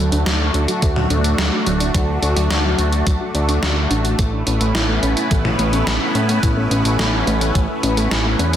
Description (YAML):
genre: synthwave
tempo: 107 BPM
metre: 4/4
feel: straight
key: A major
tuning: A4 = 440 Hz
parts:
  - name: lush unison pad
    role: sustained chords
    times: 0.0-8.6 s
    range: A3 to B4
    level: -21 LUFS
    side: equal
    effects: chorus, phaser, sidechain pumping
  - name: soft round pluck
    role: arpeggios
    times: 0.0-8.5 s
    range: F#3 to F#5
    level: -24 LUFS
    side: equal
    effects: chorus, digital delay
  - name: fat analog bass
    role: bass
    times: 0.0-8.6 s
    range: D1 to A2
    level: -19 LUFS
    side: equal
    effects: tube saturation
  - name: gated 80s digital drum machine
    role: drums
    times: 0.1-8.6 s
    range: hi-hat, snare drum, toms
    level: -22 LUFS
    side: equal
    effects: gated reverb, gated reverb snare
  - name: electronic kick drum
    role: drums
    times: 0.8-7.7 s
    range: none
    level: -19 LUFS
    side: equal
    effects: none
room: moderate plate reverb, RT60 2.0 s, digital ambience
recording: dense, heavily limited modern master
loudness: -15 LUFS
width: side -10 dB against mid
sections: 0.0-8.6 A section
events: none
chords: 0.0 D; 4.2 Aadd9